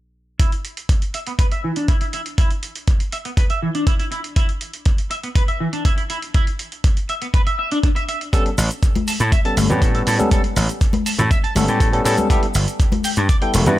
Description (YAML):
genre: nu-disco, nu disco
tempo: 121 BPM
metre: 4/4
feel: straight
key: E dorian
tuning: A4 = 440 Hz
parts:
  - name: electric guitar at the edge of break-up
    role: riff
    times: 0.4-13.8 s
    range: E3 to A5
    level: -25 LUFS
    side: equal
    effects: analog chorus, low-pass filter, digital delay
  - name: electronic hi-hat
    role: drums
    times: 0.4-13.8 s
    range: none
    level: -29 LUFS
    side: right 3 dB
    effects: none
  - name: electronic kick drum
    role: drums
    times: 0.4-13.4 s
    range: none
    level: -17 LUFS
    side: equal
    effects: none
  - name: barky tine electric piano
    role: accompaniment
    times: 8.3-13.8 s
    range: G3 to B4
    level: -22 LUFS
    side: equal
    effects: sidechain pumping, digital delay
  - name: tube shaker and congas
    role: percussion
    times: 8.3-13.8 s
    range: none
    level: -24 LUFS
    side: left 2 dB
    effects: none
  - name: gritty slap bass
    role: bass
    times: 8.6-13.8 s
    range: E1 to A2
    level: -18 LUFS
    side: equal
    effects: overdrive
room: digital ambience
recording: faint mains hum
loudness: -16 LUFS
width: side -15 dB against mid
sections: 0.4-13.8 A section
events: none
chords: 0.4 E5; 8.3 A9; 12.3 Emadd11